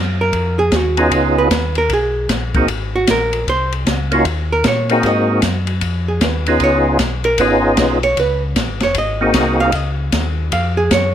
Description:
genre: soul jazz organ trio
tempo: 153 BPM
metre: 4/4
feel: swing 64% on 8ths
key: unclear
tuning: A4 = 439 Hz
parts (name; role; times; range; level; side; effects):
- mellow tonewheel organ; bass; 0.0-11.1 s; F1 to Bb2; -20 LUFS; left 1 dB; slow rotary speaker
- archtop guitar, miked and amplified; accompaniment; 0.2-11.1 s; Gb4 to F5; -18 LUFS; right 2 dB; none
- open jazz drum kit; drums; 0.3-11.0 s; hi-hat, kick drum, ride cymbal, snare drum; -20 LUFS; left 1 dB; none
- percussive tonewheel organ; melody; 1.0-9.7 s; Bb3 to Ab4; -15 LUFS; equal; slow rotary speaker, overdrive, chorus vibrato
room: light reverb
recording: none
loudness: -14 LUFS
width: side -10 dB against mid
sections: 0.0-11.1 A section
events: hollow-body jazz guitar solo 0.0-11.1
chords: 0.0 Absus2; 1.1 Db9; 2.7 Abadd9; 4.3 Ebm7; 5.0 Ab9; 5.8 Db9; 9.0 Ab9; 10.5 N.C.

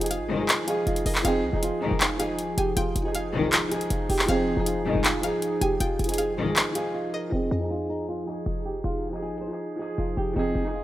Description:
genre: hip hop, trap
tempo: 158 BPM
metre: 4/4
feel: half-time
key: F minor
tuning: A4 = 440 Hz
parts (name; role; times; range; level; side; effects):
- flamenco guitar; melody; 0.0-10.8 s; C4 to C5; -31 LUFS; right 1 dB; low-pass filter, digital delay
- string-like resonator pluck; second line; 0.0-7.3 s; Eb5 to Ab5; -37 LUFS; left 2 dB; chorus, digital delay
- warm concert grand piano; accompaniment; 0.0-10.8 s; F3 to F5; -30 LUFS; right 2 dB; low-pass filter
- hollow soft pad; sustained chords; 0.0-10.8 s; F3 to Ab4; -34 LUFS; equal; chorus, low-pass filter
- short 808-style bass; bass; 0.0-10.8 s; F1 to F2; -30 LUFS; equal; none
- trap drum kit; drums; 0.0-6.8 s; handclaps, hi-hat; -26 LUFS; equal; none
- warm symphonic string section; stabs; 0.3-6.7 s; C2 to Eb3; -30 LUFS; left 4 dB; none
room: light reverb, small room ambience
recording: rough home demo mix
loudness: -23 LUFS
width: side -14 dB against mid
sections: 0.0-7.3 A section; 7.3-10.8 B section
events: break 6.9-7.3; filter sweep 7.3-10.8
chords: 0.0 Fm7

